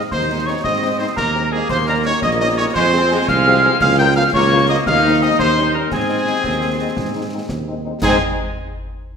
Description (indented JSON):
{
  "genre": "military-style march for wind band",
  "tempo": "114 BPM (dotted quarters)",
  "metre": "6/8",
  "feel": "straight",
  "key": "Ab major",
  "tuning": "A4 = 439 Hz",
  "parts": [
    { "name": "clear cornet", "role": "melody", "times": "0.0-8.2 s", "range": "Ab4 to G5", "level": "-22 LUFS", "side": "equal", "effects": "none" },
    { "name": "warm woodwind section", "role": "second line", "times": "0.0-8.2 s", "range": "Ab4 to G5", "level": "-22 LUFS", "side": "right 1 dB", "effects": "none" },
    { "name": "mellow tuba", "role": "bass", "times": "0.0-8.2 s", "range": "Bb1 to Ab2", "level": "-20 LUFS", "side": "right 3 dB", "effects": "none" },
    { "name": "wooden piccolo", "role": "second line", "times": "0.1-8.2 s", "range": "Ab5 to G6", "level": "-21 LUFS", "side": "left 2 dB", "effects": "none" },
    { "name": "brilliant trombone section", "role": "sustained chords", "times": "0.1-8.2 s", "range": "Ab3 to Eb4", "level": "-23 LUFS", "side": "left 2 dB", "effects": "none" },
    { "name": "concert snare drum, concert bass drum and clash cymbals", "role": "drums", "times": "0.1-8.2 s", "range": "none", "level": "-27 LUFS", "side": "equal", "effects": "none" },
    { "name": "mellow French horn section", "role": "accompaniment", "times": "0.3-8.2 s", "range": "F3 to Ab4", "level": "-25 LUFS", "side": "left 4 dB", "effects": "none" }
  ],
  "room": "wet scoring stage reverb, RT60 1.6 s",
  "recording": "minimal, uncompressed stereo recording",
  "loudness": "-14 LUFS",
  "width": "side -6 dB against mid",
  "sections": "0.0-8.0 A section; 8.0-9.1 B section",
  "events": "none",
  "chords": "0.0 Ab; 1.7 Eb7; 2.8 Fm; 3.8 Bbm/Db; 4.9 Ab/Eb; 5.4 Eb7; 5.9 Ab",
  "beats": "0.13 | 0.65 1.18 | 1.71 2.23 | 2.76 3.29 | 3.81 4.34 | 4.87 5.39 | 5.92 6.45 | 6.97 7.50 | 8.03"
}